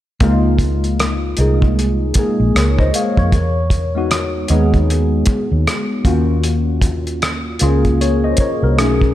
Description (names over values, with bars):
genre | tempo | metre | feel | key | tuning
R&B, neo-soul | 77 BPM | 4/4 | swing 60% on 16ths | Db major | A4 = 440 Hz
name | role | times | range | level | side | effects
tine electric piano | accompaniment | 0.2-9.1 s | Ab3 to F5 | -18 LUFS | left 1 dB | overdrive, phaser
vintage muted fingered electric bass | bass | 0.2-9.1 s | Bb1 to F2 | -17 LUFS | equal | none
cloth-damped thuddy drum kit | drums | 0.2-9.1 s | hi-hat, kick drum, rim click | -18 LUFS | equal | none
room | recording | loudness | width
light reverb, studio reverb | none | -13 LUFS | side -13 dB against mid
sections
0.2-9.1 A section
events
none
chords
0.2 Db69; 3.3 Emaj9; 6.0 Ebm9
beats
| 0.21 0.99 1.76 2.54 | 3.32 4.10 4.88 5.66 | 6.44 7.22 8.00 8.78